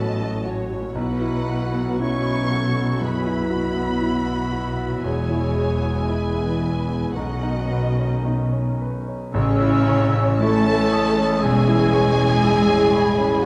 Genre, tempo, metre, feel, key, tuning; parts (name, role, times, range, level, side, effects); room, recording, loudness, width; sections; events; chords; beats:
cinematic, emotional film score for orchestra; 58 BPM; 4/4; uneven beats, rubato; A4 = 439 Hz
warm studio violin section; melody; 0.0-13.4 s; C#5 to C#6; -32 LUFS; equal
dark studio violin section; second line; 0.0-13.5 s; C#4 to D#5; -33 LUFS; equal
warm clarinet; second line; 0.0-13.5 s; C#4 to C#5; -29 LUFS; equal
clear concert grand piano; accompaniment; 0.0-13.5 s; A1 to C#5; -28 LUFS; equal
dark studio viola section; accompaniment; 0.0-13.4 s; C#3 to E4; -33 LUFS; equal
dark French horn section; sustained chords; 0.0-13.5 s; E3 to C#4; -32 LUFS; equal
dark studio double bass section; bass; 0.0-12.3 s; E1 to B1; -28 LUFS; equal
warm studio cello section; bass; 0.0-13.4 s; E2 to A3; -28 LUFS; equal
mellow flute section; second line; 9.3-13.4 s; B5 to E6; -32 LUFS; equal
moderate scoring stage reverb, RT60 1.7 s; dark, warm production; -21 LUFS; mono
0.0-9.3 A section; 9.3-13.5 B section
0.0 F#m/A; 1.0 Bsus4; 5.1 E; 7.2 Badd9; 9.3 A
| 0.96 2.02 3.02 4.03 | 5.05 6.09 7.16 8.25 | 9.33 10.41 11.42 12.43 | 13.44